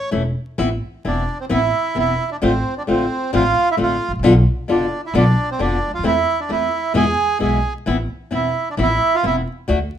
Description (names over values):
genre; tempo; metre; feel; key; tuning
tango; 132 BPM; 4/4; rubato; A minor; A4 = 439 Hz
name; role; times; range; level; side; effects
bandoneon; melody; 0.0-9.4 s; C4 to G#4; -19 LUFS; right 4 dB; none
flamenco guitar; accompaniment; 0.1-9.8 s; B2 to F#4; -19 LUFS; left 3 dB; none
upright bass; bass; 0.1-9.9 s; E1 to E2; -21 LUFS; equal; none
room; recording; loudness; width
moderate studio reverb, RT60 0.8 s; minimal, uncompressed stereo recording, vinyl crackle; -16 LUFS; side -10 dB against mid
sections
0.6-10.0 A section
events
none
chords
0.0 A; 0.6 Amadd9; 2.4 Dm7/A; 4.2 Bdim; 6.0 Am/E; 6.9 E; 7.9 Amadd9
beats
0.13 | 0.59 1.05 1.51 1.97 | 2.42 2.88 3.33 3.79 | 4.24 4.68 5.13 5.59 | 6.04 6.49 6.95 7.41 | 7.87 8.32 8.78 9.24 | 9.69